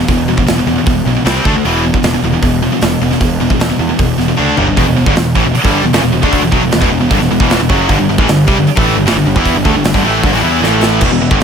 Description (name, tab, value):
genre	heavy metal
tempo	154 BPM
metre	4/4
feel	straight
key	E minor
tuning	A4 = 439 Hz
part	heavy high-gain guitar	riff	0.0-11.4 s	E2 to E4	-16 LUFS	right 13 dB	distortion
part	high-gain distorted guitar	riff	0.0-11.4 s	E2 to E4	-15 LUFS	left 10 dB	distortion
part	big rock drum kit	drums	0.0-11.4 s	crash cymbal, hi-hat, kick drum, snare drum, toms	-16 LUFS	right 1 dB	none
part	fuzz picked electric bass	bass	0.1-11.4 s	E1 to E2	-17 LUFS	equal	overdrive
part	overdriven electric guitar	riff	4.8-11.4 s	E2 to E4	-18 LUFS	right 1 dB	none
part	pipe organ, principal chorus	sustained chords	7.9-11.4 s	D3 to A5	-26 LUFS	right 2 dB	none
room	small room ambience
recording	none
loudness	-9 LUFS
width	side -7 dB against mid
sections	0.0-4.8 A section; 4.8-11.0 B section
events	drum fill 4.4-4.8, 10.6-11.0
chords	0.0 E5; 1.3 C5; 1.5 D5; 1.7 E5; 4.4 D5; 4.6 G5; 4.8 Em; 7.9 G5; 10.6 A5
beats	| 0.10 0.48 0.88 1.26 | 1.65 2.04 2.43 2.82 | 3.21 3.60 3.99 4.38 | 4.77 5.16 5.55 5.94 | 6.33 6.72 7.11 7.50 | 7.89 8.28 8.67 9.06 | 9.46 9.85 10.24 10.63 | 11.02 11.41